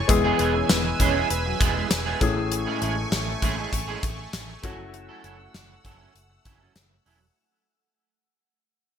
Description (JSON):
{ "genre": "1980s-style pop", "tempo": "99 BPM", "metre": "4/4", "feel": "straight", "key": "unclear", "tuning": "A4 = 440 Hz", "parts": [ { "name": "warm concert grand piano", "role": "accompaniment", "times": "0.0-7.4 s", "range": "A2 to G#4", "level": "-28 LUFS", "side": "left 5 dB", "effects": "none" }, { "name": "sweeping resonant pad", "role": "sustained chords", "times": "0.0-7.3 s", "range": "A3 to E6", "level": "-32 LUFS", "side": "right 4 dB", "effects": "chorus" }, { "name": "electric guitar at the edge of break-up", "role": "riff", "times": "0.1-7.3 s", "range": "F#3 to A4", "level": "-30 LUFS", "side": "right 6 dB", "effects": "ensemble chorus, digital delay" }, { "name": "mellow synth brass", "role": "stabs", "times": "0.1-1.9 s", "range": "F#3 to C#5", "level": "-31 LUFS", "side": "right 2 dB", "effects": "chorus" }, { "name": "vintage muted fingered electric bass", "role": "bass", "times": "0.1-7.3 s", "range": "E1 to A1", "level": "-32 LUFS", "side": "equal", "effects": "none" }, { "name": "gated 80s drum kit", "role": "drums", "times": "0.1-7.2 s", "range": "hi-hat, kick drum, snare drum, tambourine", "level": "-24 LUFS", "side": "left 1 dB", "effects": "none" } ], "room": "moderate plate reverb, RT60 2.8 s", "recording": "bright 1980s-style digital production", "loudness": "-21 LUFS", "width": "side -8 dB against mid", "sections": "0.0-7.4 A section", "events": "fade-out 0.0-7.4", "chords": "0.1 E; 2.2 Amaj7; 4.6 F#m7", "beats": "| 0.09 0.70 1.30 1.91 | 2.52 3.12 3.73 4.33 | 4.94 5.54 6.15 6.76" }